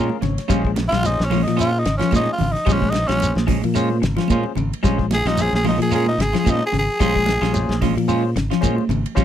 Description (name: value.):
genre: afrobeat.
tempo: 111 BPM.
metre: 4/4.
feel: swing 56% on 16ths.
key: Bb dorian.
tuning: A4 = 439 Hz.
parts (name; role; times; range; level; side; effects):
barky tine electric piano; accompaniment; 0.0-9.2 s; Db4 to F5; -28 LUFS; left 11 dB; none.
clean electric guitar; stabs; 0.0-9.2 s; Ab3 to F4; -25 LUFS; right 12 dB; none.
modern bright fingered electric bass; bass; 0.0-9.2 s; Ab1 to Bb2; -22 LUFS; equal; none.
congas; percussion; 0.1-9.0 s; none; -27 LUFS; right 7 dB; none.
clean electric guitar; arpeggios; 0.2-9.2 s; Db3 to Ab3; -24 LUFS; left 10 dB; vibrato effect.
damped 70s drum kit; drums; 0.2-9.2 s; hi-hat, kick drum, ride cymbal, snare drum; -24 LUFS; equal; none.
shekere; percussion; 0.2-9.2 s; none; -28 LUFS; right 2 dB; none.
claves; percussion; 0.5-9.2 s; none; -42 LUFS; left 4 dB; none.
growling tenor saxophone; melody; 0.9-7.8 s; Db4 to Ab4; -21 LUFS; equal; none.
room: little or no reverb.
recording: dry, close 1970s-style studio recording.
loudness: -17 LUFS.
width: side -10 dB against mid.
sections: 0.0-9.2 A section.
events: tine electric piano fill 0.0-0.5; tenor saxophone solo 0.0-9.2.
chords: 0.0 Bbm7.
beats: | 0.49 1.03 1.58 2.12 | 2.66 3.21 3.75 4.29 | 4.83 5.38 5.92 6.46 | 7.00 7.54 8.08 8.62 | 9.17.